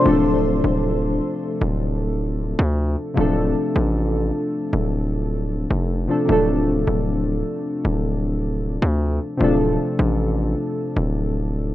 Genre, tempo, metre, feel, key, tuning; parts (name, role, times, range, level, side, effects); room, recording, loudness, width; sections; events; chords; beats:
hip hop; 154 BPM; 4/4; half-time; D minor; A4 = 440 Hz
warbly lo-fi synth keys; accompaniment; 0.0-11.7 s; C3 to A4; -22 LUFS; left 1 dB; chorus, low-pass filter
distorted 808-style bass; bass; 0.1-11.7 s; D1 to D2; -21 LUFS; equal; distortion
light reverb; rough home demo mix; -19 LUFS; side -14 dB against mid
0.1-11.7 A section
0.1 Dm7
| 0.06 0.45 0.83 1.22 | 1.61 2.00 2.39 2.78 | 3.17 3.56 3.95 4.34 | 4.73 5.12 5.51 5.90 | 6.29 6.68 7.07 7.46 | 7.85 8.24 8.63 9.02 | 9.41 9.80 10.19 10.57 | 10.96 11.35 11.74